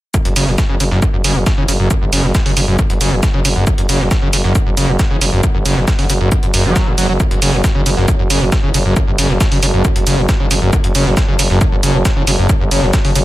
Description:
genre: driving peak-time techno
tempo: 136 BPM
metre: 4/4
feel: straight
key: F# minor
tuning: A4 = 440 Hz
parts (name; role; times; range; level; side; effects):
- screaming distorted acid line; riff; 0.1-13.2 s; F#2 to F#3; -18 LUFS; equal; distortion, analog chorus, sidechain pumping, ping-pong delay
- breakbeat sampler-style drum kit; drums; 0.1-13.2 s; hi-hat, shaker, snare drum; -25 LUFS; left 1 dB; overdrive, high-pass filter on perc, high-pass filter on hats, high-pass filter on snare, high-pass filter on room
- electronic kick drum; drums; 0.1-13.0 s; none; -15 LUFS; equal; none
- ethereal airy pad; texture; 2.1-13.2 s; F#4 to A5; -26 LUFS; right 1 dB; ensemble chorus, built-in reverb, sidechain pumping
- growling FM bass; bass; 0.3-13.2 s; E1 to G1; -17 LUFS; equal; sidechain pumping
- electronic hi-hat; drums; 0.4-13.2 s; none; -19 LUFS; right 3 dB; none
room: little or no reverb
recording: none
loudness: -11 LUFS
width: side -16 dB against mid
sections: 0.1-13.2 A section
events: fade-in on ambient pad 0.1-13.2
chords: 0.1 F#m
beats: | 0.14 0.58 1.02 1.46 | 1.91 2.35 2.79 3.23 | 3.67 4.11 4.55 4.99 | 5.43 5.88 6.32 6.76 | 7.20 7.64 8.08 8.52 | 8.96 9.40 9.85 10.29 | 10.73 11.17 11.61 12.05 | 12.49 12.94

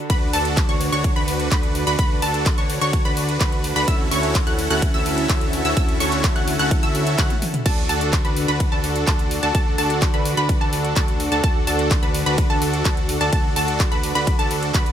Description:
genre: EDM, festival progressive house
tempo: 127 BPM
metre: 4/4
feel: straight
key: D major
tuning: A4 = 440 Hz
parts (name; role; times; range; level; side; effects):
- lush unison pad; sustained chords; 0.0-14.9 s; D3 to B4; -29 LUFS; left 1 dB; chorus, sidechain pumping
- wide unison pluck; arpeggios; 0.1-14.9 s; A5 to F#6; -26 LUFS; equal; sidechain pumping, ping-pong delay
- supersaw chords; riff; 0.1-14.9 s; C#4 to F#5; -24 LUFS; equal; sidechain pumping, ping-pong delay
- fat analog bass; bass; 0.1-14.9 s; D2; -26 LUFS; equal; sidechain pumping
- big-room dance drum kit; drums; 0.1-14.9 s; crash cymbal, handclaps, hi-hat, ride cymbal, toms; -28 LUFS; equal; none
- electronic kick drum; drums; 0.1-14.8 s; none; -20 LUFS; equal; overdrive
room: digital ambience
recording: none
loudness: -17 LUFS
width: side -10 dB against mid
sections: 0.0-14.9 A section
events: drum fill 7.3-7.7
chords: 0.1 Bm/D; 3.9 F#m7/D; 7.7 D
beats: | 0.10 0.57 1.04 1.52 | 1.99 2.46 2.93 3.41 | 3.88 4.35 4.82 5.29 | 5.77 6.24 6.71 7.18 | 7.66 8.13 8.60 9.07 | 9.55 10.02 10.49 10.96 | 11.44 11.91 12.38 12.85 | 13.33 13.80 14.27 14.74

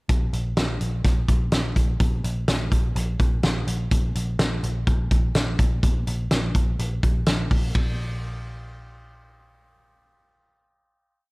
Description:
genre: jangly indie pop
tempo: 125 BPM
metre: 4/4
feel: straight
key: unclear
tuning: A4 = 440 Hz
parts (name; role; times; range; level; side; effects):
- vintage muted picked electric bass; bass; 0.1-11.3 s; Bb1; -26 LUFS; equal; none
- loose indie drum kit; drums; 0.1-7.9 s; hi-hat, kick drum, ride cymbal, snare drum; -22 LUFS; equal; none
room: little or no reverb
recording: none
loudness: -21 LUFS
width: side -26 dB against mid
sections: 0.1-7.7 verse; 7.7-11.3 final note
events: none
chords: none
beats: | 0.09 0.57 1.04 1.52 | 2.00 2.48 2.96 3.44 | 3.91 4.39 4.87 5.35 | 5.83 6.31 6.79 7.27 | 7.75 8.23 8.71 9.19 | 9.66 10.14 10.62 11.10

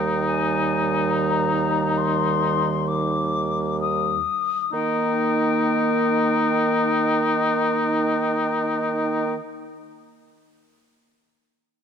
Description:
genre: classical, slow romantic movement for wind quintet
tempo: free time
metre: none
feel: none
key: Eb major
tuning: A4 = 438 Hz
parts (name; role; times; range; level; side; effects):
- silver concert flute; melody; 0.0-9.4 s; G5 to Eb6; -27 LUFS; left 9 dB; none
- warm oboe; second line; 0.0-9.3 s; Eb4; -24 LUFS; left 3 dB; none
- dark French horn; accompaniment; 0.0-9.3 s; Eb3 to Bb3; -28 LUFS; left 2 dB; none
- mellow clarinet; accompaniment; 0.0-9.3 s; G3 to Eb4; -30 LUFS; right 13 dB; none
- mellow bassoon; bass; 0.0-9.3 s; Eb2 to Eb3; -25 LUFS; right 3 dB; none
room: light reverb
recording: close, detailed microphones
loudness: -20 LUFS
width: side -7 dB against mid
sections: 0.0-4.7 A section; 4.7-11.8 B section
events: slowing down 0.0-4.7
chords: 0.0 Eb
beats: free time

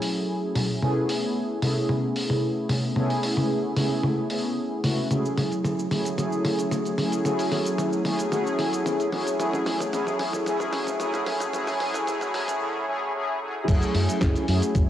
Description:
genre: nu-disco, nu disco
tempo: 112 BPM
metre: 4/4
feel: straight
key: F# minor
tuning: A4 = 440 Hz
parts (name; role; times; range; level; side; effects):
- mellow synth brass; accompaniment; 0.0-14.9 s; F#3 to G#4; -25 LUFS; equal; chorus, sidechain pumping, cassette tape, analog delay
- dusty soul sampler-style drum kit; drums; 0.0-14.9 s; crash cymbal, hi-hat, shaker, snare drum, toms; -28 LUFS; equal; cassette tape
- fingered electric bass with an envelope filter; bass; 13.7-14.9 s; F#1 to F#2; -24 LUFS; equal; sidechain pumping
- electronic kick drum; drums; 13.7-14.9 s; none; -22 LUFS; equal; cassette tape
room: moderate lush hall reverb, RT60 2.0 s, digital ambience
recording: home recording on cassette, high-pass filter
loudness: -23 LUFS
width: side -11 dB against mid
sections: 0.0-13.7 A section; 13.7-14.9 B section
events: build-up 0.0-13.7; drum fill 0.0-12.6; drop 13.7-14.9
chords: 0.0 F#m7; 0.8 Amaj9; 5.1 F#m7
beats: 0.29 | 0.82 1.36 1.90 2.43 | 2.97 3.50 4.04 4.57 | 5.11 5.65 6.18 6.72 | 7.25 7.79 8.32 8.86 | 9.40 9.93 10.47 11.00 | 11.54 12.07 12.61 13.15 | 13.68 14.22 14.75

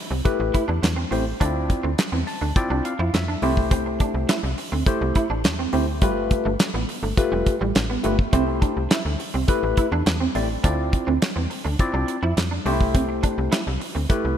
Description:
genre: early-eighties boogie funk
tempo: 104 BPM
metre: 4/4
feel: straight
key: C major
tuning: A4 = 440 Hz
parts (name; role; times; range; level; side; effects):
- electric guitar at the edge of break-up; riff; 0.1-14.1 s; G3 to E4; -28 LUFS; right 5 dB; ensemble chorus
- slap-like FM bass; bass; 0.1-14.4 s; F1 to F2; -25 LUFS; equal; none
- barky tine electric piano; accompaniment; 0.2-14.4 s; A3 to A5; -26 LUFS; left 2 dB; overdrive, phaser
- damped 70s drum kit; drums; 0.3-14.2 s; handclaps, hi-hat, kick drum, snare drum; -22 LUFS; equal; none
room: moderate lush hall reverb, RT60 2.0 s, small room reverb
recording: bright 1980s-style digital production, faint mains hum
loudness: -20 LUFS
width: side -9 dB against mid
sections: 0.0-14.4 A section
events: tine electric piano fill 2.0-3.7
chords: 0.0 C6; 1.4 Dm9; 3.4 C6; 6.0 G9; 8.3 C6; 10.6 Dm9; 12.7 C6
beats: 0.25 0.83 | 1.41 1.99 2.56 3.14 | 3.72 4.29 4.87 5.45 | 6.02 6.60 7.18 7.75 | 8.33 8.91 9.48 10.06 | 10.64 11.22 11.79 12.37 | 12.95 13.52 14.10

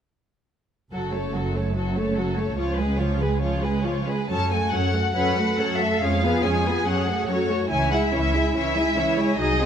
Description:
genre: classical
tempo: 142 BPM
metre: 4/4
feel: rubato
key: F# minor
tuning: A4 = 438 Hz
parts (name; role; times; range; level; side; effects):
- rich symphonic violin section; melody; 0.9-9.7 s; A4 to A5; -27 LUFS; left 3 dB; none
- rich symphonic violin section; second line; 0.9-9.7 s; E4 to E5; -29 LUFS; left 1 dB; none
- warm studio viola section; accompaniment; 0.9-9.7 s; E3 to E#4; -26 LUFS; equal; none
- warm symphonic cello section; bass; 0.9-9.7 s; C#2 to B4; -29 LUFS; right 3 dB; none
- warm symphonic double bass section; bass; 0.9-9.7 s; F#1 to F#2; -27 LUFS; right 2 dB; none
room: light reverb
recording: close, detailed microphones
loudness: -21 LUFS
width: side -8 dB against mid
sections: 0.9-4.3 A section; 4.3-9.7 B section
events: none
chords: 0.9 F#m; 2.6 C#7; 4.3 F#m; 6.0 C#7/E#; 6.9 F#m; 7.7 C#m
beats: | 0.92 1.34 1.76 2.17 | 2.59 3.00 3.42 3.86 | 4.30 4.74 5.16 5.59 | 6.02 6.45 6.87 7.29 | 7.71 8.14 8.55 8.97 | 9.38

